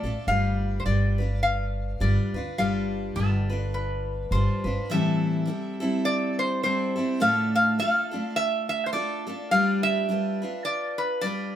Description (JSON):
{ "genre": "acoustic folk duo or small band", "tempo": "104 BPM", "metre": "4/4", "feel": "swing 57% on 8ths", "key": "unclear", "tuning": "A4 = 440 Hz", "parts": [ { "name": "metal-body resonator slide guitar", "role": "melody", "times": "0.0-11.6 s", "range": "A4 to F5", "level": "-26 LUFS", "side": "equal", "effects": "none" }, { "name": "picked steel-string acoustic guitar", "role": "accompaniment", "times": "0.0-11.6 s", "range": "A2 to B4", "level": "-28 LUFS", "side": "equal", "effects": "none" }, { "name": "upright bass", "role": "bass", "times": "0.0-4.8 s", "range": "G1 to D2", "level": "-26 LUFS", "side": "equal", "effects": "none" } ], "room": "light reverb", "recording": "band playing live in one room", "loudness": "-23 LUFS", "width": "side -10 dB against mid", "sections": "0.0-4.9 A section; 4.9-11.6 A section", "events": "none", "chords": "0.3 G7; 4.9 Am7; 7.2 Dm/A; 9.5 G7", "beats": "| 0.28 0.86 1.44 2.02 | 2.59 3.17 3.74 4.32 | 4.90 5.47 6.05 6.62 | 7.20 7.78 8.35 8.93 | 9.50 10.07 10.65 11.22" }